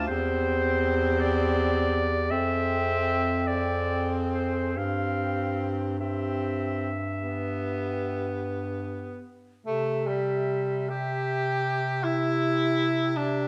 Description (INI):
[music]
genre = classical, lyrical piece for single-reed quartet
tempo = 44-55 BPM (dotted quarters)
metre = 12/8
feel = rubato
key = C major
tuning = A4 = 440 Hz
[part]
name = clear clarinet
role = melody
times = 0.0-13.5 s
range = C5 to F5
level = -34 LUFS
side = equal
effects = none
[part]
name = warm alto saxophone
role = second line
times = 0.0-13.5 s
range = G4 to Ab4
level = -38 LUFS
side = equal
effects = none
[part]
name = clear tenor saxophone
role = accompaniment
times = 0.0-13.5 s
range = G3 to G4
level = -32 LUFS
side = equal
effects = none
[part]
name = clear bass clarinet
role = bass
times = 0.0-13.5 s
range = E2 to C3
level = -32 LUFS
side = equal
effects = none
[sound]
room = moderate recital hall reverb, RT60 1.5 s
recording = none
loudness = -27 LUFS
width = mono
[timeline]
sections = 0.0-9.6 A section; 9.6-13.5 B section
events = none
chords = 0.1 C/E; 2.3 Dm7b5/F; 4.8 C/G; 7.2 G; 9.6 C